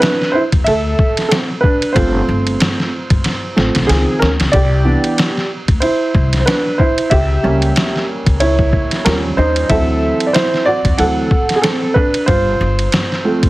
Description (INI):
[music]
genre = hip hop, jazz-hop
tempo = 93 BPM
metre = 4/4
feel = swing 57% on 16ths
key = C major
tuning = A4 = 438 Hz
[part]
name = warm upright piano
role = accompaniment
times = 0.0-13.5 s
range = Eb3 to F#5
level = -15 LUFS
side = right 1 dB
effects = plate reverb
[part]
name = trip hop sampler-style drum kit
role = drums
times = 0.0-13.5 s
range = hi-hat, kick drum, ride cymbal, snare drum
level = -17 LUFS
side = equal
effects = none
[part]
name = upright bass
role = bass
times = 0.5-13.5 s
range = G1 to E2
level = -17 LUFS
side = left 1 dB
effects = none
[sound]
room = light reverb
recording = heavily compressed radio sound, multiband compression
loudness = -12 LUFS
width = side -18 dB against mid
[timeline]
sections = 0.0-4.5 A section; 4.5-13.5 A section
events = upright piano solo 0.0-4.5, 4.5-13.5; drum fill 3.2-4.5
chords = 0.0 D7sus2; 2.0 G9sus4; 3.9 Dbmaj9; 4.5 Cmaj9; 7.1 C#dim7; 9.1 Eb9; 9.7 D9; 12.3 G9sus4